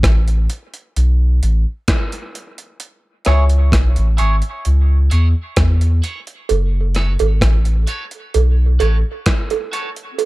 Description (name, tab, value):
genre	dub reggae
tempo	65 BPM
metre	4/4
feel	straight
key	unclear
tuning	A4 = 440 Hz
part	soft dub sub bass	bass	0.0-9.0 s	F#1 to E2	-13 LUFS	equal	none
part	dusty soul sampler-style drum kit	drums	0.0-10.3 s	hi-hat, kick drum, rim click	-18 LUFS	equal	overdrive
part	clean electric guitar	accompaniment	3.3-9.9 s	E4 to C#5	-26 LUFS	right 3 dB	high-pass filter, dub echo
part	warm upright piano	stabs	3.3-9.9 s	C#4 to C#5	-30 LUFS	left 5 dB	high-pass filter, dub echo
part	cowbell	percussion	6.5-10.3 s	none	-22 LUFS	right 10 dB	dub echo
room	digital ambience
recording	echo-heavy mix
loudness	-14 LUFS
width	side -19 dB against mid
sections	0.0-10.3 A section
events	break 0.0-6.5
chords	0.0 N.C.; 2.8 C#m; 6.5 F#m